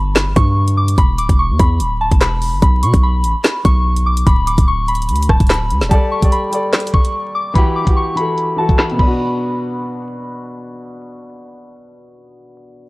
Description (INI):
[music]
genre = hip hop, drill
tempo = 146 BPM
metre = 4/4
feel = half-time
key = B minor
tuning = A4 = 438 Hz
[part]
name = soft synth bell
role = melody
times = 0.0-10.4 s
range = A5 to D6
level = -19 LUFS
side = left 1 dB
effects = chorus
[part]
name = hard-hitting 808-style bass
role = bass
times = 0.0-5.9 s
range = D1 to B2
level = -16 LUFS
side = equal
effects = none
[part]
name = drill drum kit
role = drums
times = 0.2-9.1 s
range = crash cymbal, handclaps, hi-hat, kick drum, rim click, snare drum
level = -14 LUFS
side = equal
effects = none
[part]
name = warm grand piano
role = accompaniment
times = 5.9-12.9 s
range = B2 to D5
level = -22 LUFS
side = left 1 dB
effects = none
[sound]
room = little or no reverb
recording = dry, gritty hardware recording, vinyl crackle, low-pass filter, lossy compression artefacts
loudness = -12 LUFS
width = side -22 dB against mid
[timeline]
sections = 0.0-5.9 A section; 5.9-9.2 B section; 9.2-12.5 C section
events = none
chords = 0.0 G; 1.0 E5; 2.6 Aadd9 (rootless); 4.3 Bm/D; 5.9 Gsus2; 7.6 Emadd9; 9.0 Bm